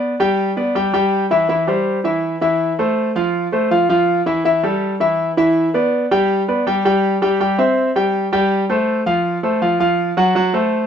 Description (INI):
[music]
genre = latin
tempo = 162 BPM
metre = 4/4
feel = straight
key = C major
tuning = A4 = 438 Hz
[part]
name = clear concert grand piano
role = solo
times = 0.0-10.8 s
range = E3 to G5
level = -15 LUFS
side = equal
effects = none
[sound]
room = moderate studio reverb, RT60 0.6 s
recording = band playing live in one room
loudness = -15 LUFS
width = side -8 dB against mid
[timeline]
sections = 0.0-10.9 A section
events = none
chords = 0.0 G; 1.5 C; 3.0 F; 4.4 A5; 5.9 G; 7.4 C; 8.9 F; 10.4 D7 (rootless)